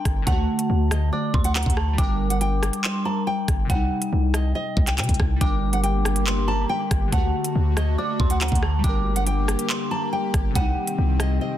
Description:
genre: hip hop, drill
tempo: 140 BPM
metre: 4/4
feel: half-time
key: G harmonic minor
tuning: A4 = 442 Hz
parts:
  - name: nylon-string guitar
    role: melody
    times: 0.0-11.6 s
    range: D5 to A5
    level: -29 LUFS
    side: equal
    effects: none
  - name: glassy digital keys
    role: accompaniment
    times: 0.0-11.6 s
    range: C3 to Bb4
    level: -28 LUFS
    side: equal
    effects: chorus
  - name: hard-hitting 808-style bass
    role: bass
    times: 0.1-11.4 s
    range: G1 to C3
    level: -23 LUFS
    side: equal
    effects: none
  - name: drill drum kit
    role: drums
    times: 0.1-11.3 s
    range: handclaps, hi-hat, kick drum, rim click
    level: -24 LUFS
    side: equal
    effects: none
  - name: dark detuned synth bell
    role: second line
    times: 0.3-11.6 s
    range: G5 to D6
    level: -33 LUFS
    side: right 2 dB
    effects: chorus, digital delay
  - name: airy breathy pad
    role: sustained chords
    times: 5.4-11.6 s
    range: D3 to G4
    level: -30 LUFS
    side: left 2 dB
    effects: chorus
room: digital ambience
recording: dense, heavily limited modern master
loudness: -20 LUFS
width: side -12 dB against mid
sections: 0.0-11.6 A section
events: none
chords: 0.3 D; 2.0 Gm; 3.7 Cm; 5.4 Gm; 7.1 D; 8.8 Gm; 10.6 Cm

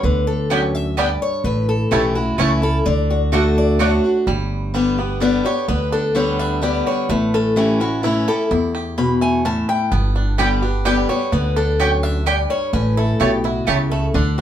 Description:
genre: bluegrass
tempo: 128 BPM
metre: 3/4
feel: straight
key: unclear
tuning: A4 = 440 Hz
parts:
  - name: picked old ladder-braced acoustic guitar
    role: melody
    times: 0.0-14.4 s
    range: E4 to B5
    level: -22 LUFS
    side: left 3 dB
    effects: none
  - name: picked steel-string acoustic guitar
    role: accompaniment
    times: 0.0-14.4 s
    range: E2 to G4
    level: -20 LUFS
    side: left 1 dB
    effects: none
  - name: upright bass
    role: bass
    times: 0.0-14.4 s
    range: G1 to E2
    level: -21 LUFS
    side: right 1 dB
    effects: none
  - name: bluegrass banjo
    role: melody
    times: 0.5-14.4 s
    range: G3 to G4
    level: -27 LUFS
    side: right 4 dB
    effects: none
  - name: mandolin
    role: stabs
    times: 0.5-3.9, 10.4-13.8 s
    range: A3 to A5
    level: -21 LUFS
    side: right 4 dB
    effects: none
room: moderate studio ambience, RT60 0.5 s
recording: band playing live in one room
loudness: -16 LUFS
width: side -10 dB against mid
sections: 0.0-4.3 A section; 4.3-14.4 A section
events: none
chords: 0.0 G; 1.4 A; 2.9 D; 4.3 G; 7.1 A; 9.9 G; 12.7 A

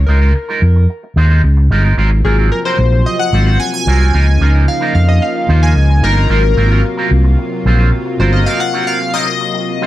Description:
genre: funk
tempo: 111 BPM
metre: 4/4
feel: straight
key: Db major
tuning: A4 = 440 Hz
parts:
  - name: overdriven fingered electric bass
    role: bass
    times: 0.0-8.4 s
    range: G1 to F2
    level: -10 LUFS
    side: equal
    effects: none
  - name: chorused polysynth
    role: accompaniment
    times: 0.1-9.9 s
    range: Ab4 to Ab5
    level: -18 LUFS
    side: left 3 dB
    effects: none
  - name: electric guitar with an envelope filter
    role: riff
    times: 0.1-9.9 s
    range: Gb3 to C5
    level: -20 LUFS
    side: right 4 dB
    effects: wide subtle chorus
  - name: lush unison pad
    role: sustained chords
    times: 2.0-9.9 s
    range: C3 to F4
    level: -20 LUFS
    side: equal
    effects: chorus
room: digital ambience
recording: none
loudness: -10 LUFS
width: side -14 dB against mid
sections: 0.0-9.9 A section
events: analog polysynth solo 0.0-9.9; break 8.5-9.9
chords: 0.0 Db69; 2.0 Ab13; 4.1 Db69; 6.3 Ab13

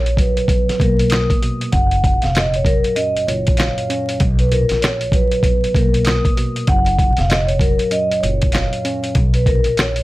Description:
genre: hip hop, boom-bap hip-hop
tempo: 97 BPM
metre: 4/4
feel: swing 61% on 16ths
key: F# major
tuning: A4 = 440 Hz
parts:
  - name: vibraphone with medium mallets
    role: melody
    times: 0.0-10.0 s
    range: A#4 to F#5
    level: -20 LUFS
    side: equal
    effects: high-pass filter, low-pass filter
  - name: tine electric piano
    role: accompaniment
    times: 0.0-10.0 s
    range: B1 to D#6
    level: -24 LUFS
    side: right 1 dB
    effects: medium stereo tremolo, cassette tape, high-pass filter, low-pass filter
  - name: upright bass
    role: bass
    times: 0.0-10.0 s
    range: E#1 to B1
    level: -20 LUFS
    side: equal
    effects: none
  - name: dusty soul sampler-style drum kit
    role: drums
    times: 0.1-10.0 s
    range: hi-hat, kick drum, snare drum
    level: -17 LUFS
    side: equal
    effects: none
room: light reverb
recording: vinyl crackle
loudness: -14 LUFS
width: side -18 dB against mid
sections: 0.0-10.0 A section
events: none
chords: 0.0 Bmaj7; 1.7 F#maj7; 4.2 Bmaj7; 6.7 F#maj7; 9.2 Bmaj7(no3)

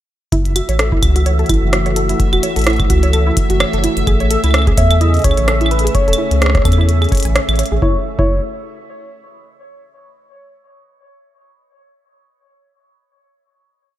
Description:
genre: IDM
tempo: 128 BPM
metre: 4/4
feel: swing 56% on 16ths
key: F# minor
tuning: A4 = 442 Hz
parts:
  - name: soft string machine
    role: sustained chords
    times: 0.5-8.0 s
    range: C#3 to G#4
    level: -22 LUFS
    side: left 1 dB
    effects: ensemble chorus, vintage 12-bit sampler grit
  - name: warbly dusty pluck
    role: arpeggios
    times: 0.3-8.4 s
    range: E4 to G#5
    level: -22 LUFS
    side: right 1 dB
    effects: chorus, tape echo
  - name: round analog bass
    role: bass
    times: 0.3-8.4 s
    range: E1 to E2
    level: -15 LUFS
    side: equal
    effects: none
  - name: electronic kick drum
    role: drums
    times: 0.3-8.3 s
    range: none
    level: -17 LUFS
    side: equal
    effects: studio reverb
  - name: glitchy drum kit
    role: drums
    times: 0.3-7.8 s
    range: claves, hi-hat, rim click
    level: -20 LUFS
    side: equal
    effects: studio reverb
  - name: bubbling stepped-filter texture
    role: texture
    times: 0.3-7.8 s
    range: E5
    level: -25 LUFS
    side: right 2 dB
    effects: chorus, built-in reverb, sidechain pumping
  - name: soft struck synth lead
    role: melody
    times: 4.8-8.4 s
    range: B4 to E5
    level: -22 LUFS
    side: left 1 dB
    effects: chorus, dub echo
room: little or no reverb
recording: none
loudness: -12 LUFS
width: side -13 dB against mid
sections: 0.3-7.8 groove; 7.8-9.7 final chord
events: none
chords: 0.3 F#m7; 4.1 Amaj7; 7.8 F#m7

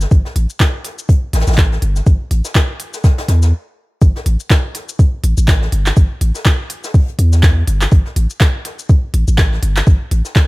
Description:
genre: minimal techno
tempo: 123 BPM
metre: 4/4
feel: swing 57% on 16ths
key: unclear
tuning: A4 = 438 Hz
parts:
  - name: punchy sub bass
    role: bass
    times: 0.0-10.2 s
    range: G1 to E2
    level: -14 LUFS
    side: equal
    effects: sidechain pumping
  - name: minimal click drum kit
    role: drums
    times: 0.0-10.5 s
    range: handclaps, hi-hat, shaker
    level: -21 LUFS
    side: equal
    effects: studio reverb
  - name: soft brush drum kit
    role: drums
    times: 0.0-10.5 s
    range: hi-hat, snare drum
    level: -28 LUFS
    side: left 2 dB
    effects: high-pass filter on hats, studio reverb, high-pass filter on snare, high-pass filter on room
  - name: electronic kick drum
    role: drums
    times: 0.1-10.5 s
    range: none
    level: -11 LUFS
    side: equal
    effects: studio reverb
room: studio ambience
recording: none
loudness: -12 LUFS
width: side -22 dB against mid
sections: 0.0-4.0 A section; 4.0-10.5 B section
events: stop 3.5-4.0; drop 4.0-10.5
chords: none

